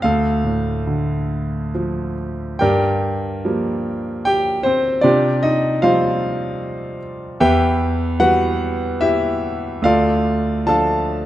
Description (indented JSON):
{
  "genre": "classical, lyrical solo piano",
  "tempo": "66-78 BPM",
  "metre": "3/4",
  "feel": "rubato",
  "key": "G minor",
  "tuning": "A4 = 440 Hz",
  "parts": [
    { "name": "clear concert grand piano", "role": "solo", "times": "0.0-11.3 s", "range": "D2 to A5", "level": "-16 LUFS", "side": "equal", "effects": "none" }
  ],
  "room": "moderate recital hall reverb, RT60 1.5 s",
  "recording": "faint mains hum",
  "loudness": "-16 LUFS",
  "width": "side -13 dB against mid",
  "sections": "0.0-2.6 A section; 2.6-11.3 B section",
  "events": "none",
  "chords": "0.0 Dm; 2.6 Gm7; 5.0 Csus4; 7.4 Em; 9.8 Dm",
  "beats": "| 0.03 0.86 1.74 | 2.61 3.44 4.25 | 5.04 5.83 6.61 | 7.40 8.20 9.00 | 9.83 10.67"
}